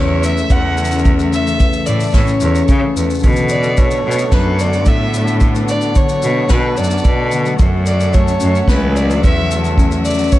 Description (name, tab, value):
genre	folktronica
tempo	110 BPM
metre	4/4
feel	straight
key	unclear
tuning	A4 = 440 Hz
part	dark violin	melody	0.0-10.4 s	B4 to F#5	-21 LUFS	equal	vintage 12-bit sampler grit, ping-pong delay
part	rich string quartet	sustained chords	0.0-10.4 s	F#3 to E5	-24 LUFS	equal	vintage 12-bit sampler grit
part	concert harp	arpeggios	0.0-10.4 s	C#3 to E4	-20 LUFS	left 4 dB	ping-pong delay
part	bright cello	bass	0.0-10.3 s	C#2 to C#3	-17 LUFS	equal	tube saturation
part	shaker and snare drum	drums	0.2-10.4 s	none	-28 LUFS	left 2 dB	none
part	kick drum	drums	0.5-10.4 s	none	-13 LUFS	equal	none
room	light reverb, small room reverb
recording	dark, warm production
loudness	-12 LUFS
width	side -15 dB against mid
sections	0.0-10.4 A section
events	none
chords	0.0 A; 3.2 Bm7; 7.6 F#m7